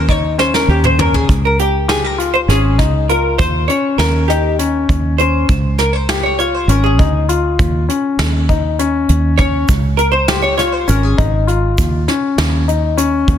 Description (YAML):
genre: progressive instrumental, band music in an uneven meter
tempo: 200 BPM (eighths)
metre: 7/8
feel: straight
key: Db lydian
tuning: A4 = 441 Hz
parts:
  - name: archtop guitar, miked and amplified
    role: accompaniment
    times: 0.0-11.6 s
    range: G4 to Db5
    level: -17 LUFS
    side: equal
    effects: double-tracked left and right
  - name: fingered electric bass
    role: bass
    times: 0.0-13.4 s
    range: Ab1 to Eb2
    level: -16 LUFS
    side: right 1 dB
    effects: none
  - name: warm grand piano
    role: arpeggios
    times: 0.1-13.4 s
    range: Db4 to G4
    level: -18 LUFS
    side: left 6 dB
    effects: none
  - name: soft brush drum kit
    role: drums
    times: 0.1-13.4 s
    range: hi-hat, kick drum, snare drum, toms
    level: -18 LUFS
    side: right 1 dB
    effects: soft clipping on snare
  - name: egg shaker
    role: percussion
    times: 9.7-13.3 s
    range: none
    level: -33 LUFS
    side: right 11 dB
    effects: none
room: light reverb, small room ambience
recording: dense, heavily limited modern master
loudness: -12 LUFS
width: side -9 dB against mid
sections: 0.0-13.4 A section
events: hollow-body jazz guitar solo 0.0-13.4; drum fill 0.4-1.3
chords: 0.0 Eb7(no3); 1.3 Db; 3.4 Eb13; 5.5 Db; 7.6 Dbsus2/Eb; 9.7 Db; 11.8 Dbadd9/Eb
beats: 0.09 0.39 0.69 0.99 | 1.29 1.59 1.89 2.19 2.49 2.79 3.09 | 3.39 3.69 3.99 4.29 4.59 4.89 5.19 | 5.49 5.79 6.09 6.39 6.69 6.99 7.29 | 7.59 7.89 8.19 8.49 8.79 9.09 9.39 | 9.69 9.99 10.29 10.59 10.89 11.19 11.49 | 11.79 12.08 12.38 12.68 12.98 13.28